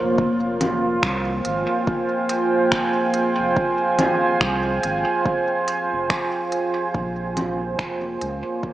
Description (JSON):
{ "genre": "ambient dub", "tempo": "71 BPM", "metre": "4/4", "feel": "swing 58% on 16ths", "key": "F minor", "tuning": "A4 = 445 Hz", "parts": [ { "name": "deep dark ambient pad", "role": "sustained chords", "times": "0.0-8.7 s", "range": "Bb3 to Ab5", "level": "-20 LUFS", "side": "right 2 dB", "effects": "chorus, built-in reverb" }, { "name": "soft dub sub bass", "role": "bass", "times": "0.0-8.4 s", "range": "F1 to Db2", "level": "-30 LUFS", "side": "equal", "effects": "none" }, { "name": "electronic kick drum", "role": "drums", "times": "0.2-8.7 s", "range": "none", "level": "-26 LUFS", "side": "equal", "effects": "overdrive" }, { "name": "organic electronic drum kit", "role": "drums", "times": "0.6-8.4 s", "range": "congas, finger snaps, hi-hat", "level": "-26 LUFS", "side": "equal", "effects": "dub echo" } ], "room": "wet huge ambient reverb, RT60 7.1 s", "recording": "small speaker sound", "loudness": "-19 LUFS", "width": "side -14 dB against mid", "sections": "0.0-8.7 A section", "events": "fade-out 4.7-8.7", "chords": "0.2 Fm; 6.9 Bbm7", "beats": "| 0.18 1.03 1.87 2.72 | 3.56 4.41 5.25 6.10 | 6.94 7.79 8.63" }